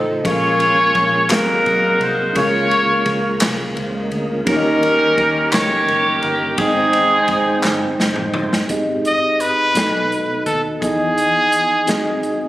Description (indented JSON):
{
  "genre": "slow gospel",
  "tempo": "57 BPM (dotted quarters)",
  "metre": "6/8",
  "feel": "straight",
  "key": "Ab major",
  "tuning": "A4 = 440 Hz",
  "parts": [
    { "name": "warm horn section", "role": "melody", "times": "0.0-8.0 s", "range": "C4 to Db5", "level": "-16 LUFS", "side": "equal", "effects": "none" },
    { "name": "mellow tine electric piano", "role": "accompaniment", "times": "0.0-12.5 s", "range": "Ab2 to G5", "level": "-21 LUFS", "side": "equal", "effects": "medium stereo tremolo" },
    { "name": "mellow tonewheel organ", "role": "sustained chords", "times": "0.0-8.7 s", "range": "Db3 to G5", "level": "-24 LUFS", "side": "right 1 dB", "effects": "chorus vibrato, slow rotary speaker" },
    { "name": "vintage muted fingered electric bass", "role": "bass", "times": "0.0-12.5 s", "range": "Gb1 to E2", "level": "-29 LUFS", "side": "equal", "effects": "none" },
    { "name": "swinging big-band drum kit", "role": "drums", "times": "0.2-12.4 s", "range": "hi-hat, kick drum, ride cymbal, snare drum, toms", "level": "-24 LUFS", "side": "equal", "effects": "none" },
    { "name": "group handclap", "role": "percussion", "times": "1.3-8.0 s", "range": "none", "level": "-25 LUFS", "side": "equal", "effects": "none" },
    { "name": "brilliant trumpet", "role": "melody", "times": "9.1-12.5 s", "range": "G#4 to Eb5", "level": "-17 LUFS", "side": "equal", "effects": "none" }
  ],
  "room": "moderate concert hall reverb, RT60 2.1 s",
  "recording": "recorded on a phone in the room, studio reverb",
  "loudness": "-14 LUFS",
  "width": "side -16 dB against mid",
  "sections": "0.0-8.7 A section; 8.7-12.5 B section",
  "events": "drum fill 7.6-8.7",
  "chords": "0.2 Bbm7; 1.3 Ab13; 2.4 Db6; 4.5 Eb7; 6.6 Abmaj7; 9.8 B7; 10.8 Emaj7; 11.9 Ab7"
}